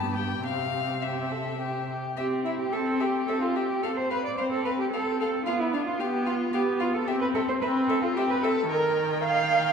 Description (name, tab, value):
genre	quick classical-period movement for string quartet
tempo	110 BPM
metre	3/4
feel	rubato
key	C major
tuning	A4 = 440 Hz
part	clear violin	melody	0.0-9.7 s	E5 to A5	-36 LUFS	left 8 dB	none
part	rich violin	second line	0.0-9.7 s	D4 to F5	-31 LUFS	left 4 dB	none
part	clear viola	accompaniment	0.0-9.7 s	Eb3 to C4	-29 LUFS	left 1 dB	none
part	rich cello	bass	0.0-9.7 s	G2 to F5	-28 LUFS	right 5 dB	none
room	wet scoring stage reverb, RT60 2.0 s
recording	recorded in a church or concert hall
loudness	-24 LUFS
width	side -6 dB against mid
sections	0.0-2.2 A section; 2.2-9.7 A section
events	none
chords	0.4 C; 3.8 Dm7/C (rootless); 5.5 G7/B; 7.1 C; 8.7 Eb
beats	| 0.44 1.02 1.60 | 2.17 2.73 3.28 | 3.83 4.38 4.92 | 5.46 6.00 6.54 | 7.08 7.62 8.16 | 8.70 9.24